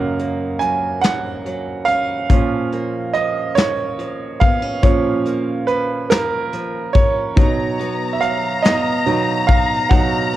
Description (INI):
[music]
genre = six-eight pop ballad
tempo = 47 BPM (dotted quarters)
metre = 6/8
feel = straight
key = unclear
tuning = A4 = 440 Hz
[part]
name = clear concert grand piano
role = accompaniment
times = 0.0-10.4 s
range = F#2 to G#5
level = -19 LUFS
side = right 4 dB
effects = none
[part]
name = picked steel-string acoustic guitar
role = arpeggios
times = 0.0-10.4 s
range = E#3 to D#4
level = -26 LUFS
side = equal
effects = none
[part]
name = soft brush drum kit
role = drums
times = 0.2-10.4 s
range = hi-hat, kick drum, snare drum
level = -16 LUFS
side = left 2 dB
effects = cassette tape
[part]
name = rich studio violin section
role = second line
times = 7.4-10.4 s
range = A#5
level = -22 LUFS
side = left 4 dB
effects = none
[sound]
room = light reverb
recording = home recording on cassette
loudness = -16 LUFS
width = side -14 dB against mid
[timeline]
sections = 0.0-10.4 A section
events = grand piano solo 0.0-10.4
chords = 0.0 F#; 2.3 A#m; 7.4 B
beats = 1.03 | 2.30 3.57 | 4.84 6.11 | 7.38 8.64 | 9.91